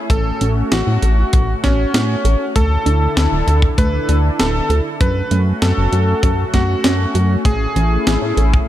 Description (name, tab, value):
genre	synthwave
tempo	98 BPM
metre	4/4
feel	straight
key	A major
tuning	A4 = 444 Hz
part	warm analog pad	sustained chords	0.0-8.7 s	D3 to A4	-24 LUFS	left 1 dB	chorus, sidechain pumping
part	bright electric grand piano	melody	0.1-8.6 s	C#4 to B4	-21 LUFS	equal	ping-pong delay
part	analog pluck	arpeggios	0.1-8.6 s	F#3 to A4	-27 LUFS	right 3 dB	none
part	chorused synth bass	bass	0.1-8.6 s	D1 to A2	-16 LUFS	equal	sidechain pumping
part	clean 12-bit digital drum machine	drums	0.1-8.5 s	hi-hat, snare drum	-22 LUFS	left 1 dB	overdrive
part	kick drum	drums	0.1-8.7 s	none	-17 LUFS	equal	none
room	light reverb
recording	dark, warm production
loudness	-13 LUFS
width	side -13 dB against mid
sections	0.0-8.7 A section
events	none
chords	0.0 A; 2.6 Dsus2; 5.0 F#m; 7.5 A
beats	| 0.11 0.72 1.33 1.95 | 2.56 3.17 3.78 4.39 | 5.01 5.62 6.23 6.84 | 7.46 8.07 8.68